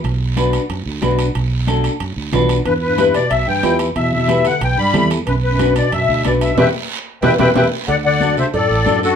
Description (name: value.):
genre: latin, cumbia.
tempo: 184 BPM.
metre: 4/4.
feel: straight.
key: E minor.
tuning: A4 = 442 Hz.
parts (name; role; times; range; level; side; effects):
fingered electric bass; bass; 0.0-9.1 s; A1 to G2; -20 LUFS; right 2 dB; none.
congas; percussion; 0.0-9.0 s; none; -25 LUFS; left 2 dB; none.
guiro; percussion; 0.0-9.2 s; none; -30 LUFS; right 7 dB; none.
timbales and cowbell; percussion; 0.0-8.7 s; none; -25 LUFS; right 5 dB; none.
semi-hollow electric guitar; accompaniment; 0.4-9.1 s; D4 to B4; -19 LUFS; left 2 dB; none.
musette accordion; melody; 2.7-9.2 s; F#4 to B5; -17 LUFS; left 4 dB; none.
mellow bass clarinet; second line; 2.7-9.2 s; F#2 to G3; -21 LUFS; right 2 dB; none.
room: moderate studio ambience, RT60 0.5 s.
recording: band playing live in one room.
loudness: -14 LUFS.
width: side -7 dB against mid.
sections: 0.0-7.9 A section; 7.9-9.2 B section.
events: drum fill 6.6-7.9; band accent 6.6-7.9.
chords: 0.0 Bm; 2.7 Em; 5.3 Bm; 6.6 Em; 7.9 D.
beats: | 0.04 0.37 0.70 1.02 | 1.35 1.68 2.00 2.33 | 2.66 2.98 3.31 3.64 | 3.96 4.29 4.62 4.94 | 5.27 5.60 5.92 6.25 | 6.58 6.90 7.23 7.56 | 7.88 8.21 8.54 8.86.